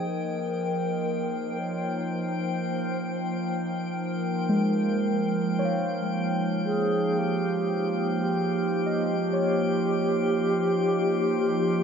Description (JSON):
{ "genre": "ambient", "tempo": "free time", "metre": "none", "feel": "none", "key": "unclear", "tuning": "A4 = 440 Hz", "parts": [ { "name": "mellow hollow alto flute", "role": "melody", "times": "0.0-11.8 s", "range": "G4 to Db5", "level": "-29 LUFS", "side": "equal", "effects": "ping-pong delay" }, { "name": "warbly tape-like pad", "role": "sustained chords", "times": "0.0-11.8 s", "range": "F3 to G5", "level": "-28 LUFS", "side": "right 1 dB", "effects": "chorus, built-in reverb" }, { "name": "muted felt-like synth keys", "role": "arpeggios", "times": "0.0-11.8 s", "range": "Ab3 to F5", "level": "-31 LUFS", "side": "left 1 dB", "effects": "chorus, ping-pong delay" }, { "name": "drifting glass-harmonics texture", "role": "texture", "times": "0.0-11.8 s", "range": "F4 to G5", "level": "-35 LUFS", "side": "left 1 dB", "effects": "chorus, built-in reverb" } ], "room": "wet huge ambient reverb, RT60 8.9 s", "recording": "nothing above 10.3 kHz", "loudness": "-24 LUFS", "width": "side -6 dB against mid", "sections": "0.0-11.8 A section", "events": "none", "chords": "0.1 Db6/F; 8.2 Eb7/F" }